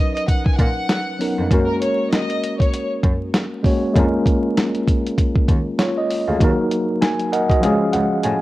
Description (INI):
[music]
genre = hip hop, boom-bap hip-hop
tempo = 98 BPM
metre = 4/4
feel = swing 57% on 16ths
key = unclear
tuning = A4 = 440 Hz
[part]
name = warm studio violin section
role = melody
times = 0.0-2.9 s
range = Bb4 to Ab5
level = -24 LUFS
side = left 1 dB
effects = cassette tape, tape echo
[part]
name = tine electric piano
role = accompaniment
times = 0.0-8.4 s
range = F3 to Ab5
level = -20 LUFS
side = equal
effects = medium stereo tremolo
[part]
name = dusty soul sampler-style drum kit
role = drums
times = 0.2-8.4 s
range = hi-hat, kick drum, snare drum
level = -18 LUFS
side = equal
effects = cassette tape
[part]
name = rich cello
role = bass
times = 0.6-8.3 s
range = Db2 to A#2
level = -23 LUFS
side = equal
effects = none
[sound]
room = small room ambience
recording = home recording on cassette, vinyl crackle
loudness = -16 LUFS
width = side -17 dB against mid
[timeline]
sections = 0.0-8.4 A section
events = drum fill 7.6-8.4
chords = 0.0 Bmaj7; 1.5 Gbadd9; 4.0 Bbm7/F; 6.4 Ebm; 7.6 Db